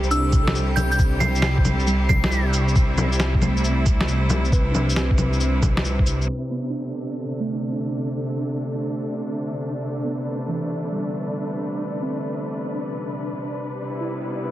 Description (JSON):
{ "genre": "future garage", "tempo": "136 BPM", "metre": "4/4", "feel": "swing 67% on 16ths", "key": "unclear", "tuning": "A4 = 440 Hz", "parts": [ { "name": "muted felt-like synth keys", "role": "accompaniment", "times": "0.0-14.5 s", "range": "E3 to B4", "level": "-29 LUFS", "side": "right 2 dB", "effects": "chorus, sidechain pumping, low-pass filter, tape echo" }, { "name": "bright chamber string section", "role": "sustained chords", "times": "0.0-14.5 s", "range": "C3 to B4", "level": "-28 LUFS", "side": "equal", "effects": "sidechain pumping" }, { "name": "dark detuned saw bass", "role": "bass", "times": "0.0-6.3 s", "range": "C2", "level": "-22 LUFS", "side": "equal", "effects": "sidechain pumping" }, { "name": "electronic shaker, cabasa, snare drum and bongos", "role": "drums", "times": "0.0-6.3 s", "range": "none", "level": "-24 LUFS", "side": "left 1 dB", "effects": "none" }, { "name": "flickering grainy texture", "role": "texture", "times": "0.0-14.5 s", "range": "C4 to D5", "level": "-35 LUFS", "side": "equal", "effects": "built-in reverb" }, { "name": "glassy synth bell", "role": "melody", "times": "0.1-2.5 s", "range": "E6 to C7", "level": "-27 LUFS", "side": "equal", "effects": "chorus, tape echo" }, { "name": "electronic kick drum", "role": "drums", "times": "0.3-6.1 s", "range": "none", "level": "-20 LUFS", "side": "equal", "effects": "none" } ], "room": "light reverb, digital ambience", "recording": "dense, heavily limited modern master, vinyl crackle, low-pass filter", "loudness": "-20 LUFS", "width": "side -14 dB against mid", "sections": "0.0-6.3 A section; 6.3-14.5 B section", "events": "filter sweep on synth keys 6.3-14.5", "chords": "0.0 Cmaj7", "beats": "0.11 0.55 | 0.99 1.43 1.88 2.32 | 2.76 3.20 3.64 4.08 | 4.52 4.96 5.41 5.85 | 6.29 6.73 7.17 7.61 | 8.05 8.49 8.93 9.38 | 9.82 10.26 10.70 11.14 | 11.58 12.02 12.46 12.90 | 13.35 13.79 14.23" }